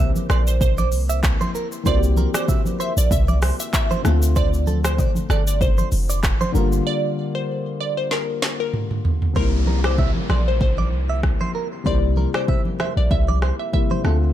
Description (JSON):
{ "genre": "afrobeats", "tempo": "96 BPM", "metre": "4/4", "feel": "swing 55% on 16ths", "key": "unclear", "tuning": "A4 = 440 Hz", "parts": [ { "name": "dark concert grand piano", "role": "accompaniment", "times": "0.0-14.3 s", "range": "C3 to G4", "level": "-27 LUFS", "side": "left 5 dB", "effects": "none" }, { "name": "direct-recorded clean electric guitar", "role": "riff", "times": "0.0-14.2 s", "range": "A4 to E5", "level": "-29 LUFS", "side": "right 6 dB", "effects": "wide subtle chorus, digital delay" }, { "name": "warm 808-style bass", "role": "bass", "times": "0.0-14.3 s", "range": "F1 to D2", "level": "-19 LUFS", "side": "equal", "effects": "none" }, { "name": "afro-pop drum kit", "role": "drums", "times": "0.2-14.2 s", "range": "handclaps, hi-hat, kick drum, rim click, shaker, snare drum, toms", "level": "-22 LUFS", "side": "equal", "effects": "none" }, { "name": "congas", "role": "percussion", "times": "0.2-14.0 s", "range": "none", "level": "-29 LUFS", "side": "right 1 dB", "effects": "none" }, { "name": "glassy wavetable pluck", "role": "melody", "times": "0.3-14.2 s", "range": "Bb4 to E5", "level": "-27 LUFS", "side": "equal", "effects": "chorus" }, { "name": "downlifter", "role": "sound effects", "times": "9.4-14.3 s", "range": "none", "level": "-35 LUFS", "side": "equal", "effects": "none" } ], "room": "digital ambience", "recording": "none", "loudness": "-18 LUFS", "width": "side -12 dB against mid", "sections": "0.0-9.4 A section; 9.4-14.3 B section", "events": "break 6.9-9.4; drum fill 8.1-9.4; hi-hats muted 9.4-14.3", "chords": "0.0 C7; 4.0 Dm7; 6.5 Gm7; 9.4 C7" }